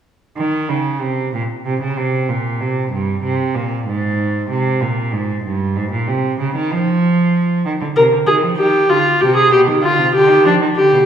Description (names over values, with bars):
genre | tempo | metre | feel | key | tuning
classical, baroque-style fugue for string quartet | 64 BPM (dotted quarters) | 12/8 | straight | unclear | A4 = 440 Hz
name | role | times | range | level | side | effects
rich cello | bass | 0.4-11.0 s | G2 to F3 | -17 LUFS | right 2 dB | none
warm viola | accompaniment | 8.0-11.1 s | D4 to Bb4 | -11 LUFS | equal | none
room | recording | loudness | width
wet scoring stage reverb, RT60 1.9 s | small room reverb | -14 LUFS | side -8 dB against mid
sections
0.1-11.1 A section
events
none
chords
0.1 Bbmadd9 (rootless); 2.0 C5; 3.9 Gmadd11; 5.8 F5; 7.6 Cm; 9.5 G7/B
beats
| 0.06 1.02 1.98 2.92 | 3.87 4.81 5.76 6.70 | 7.65 8.59 9.53 10.46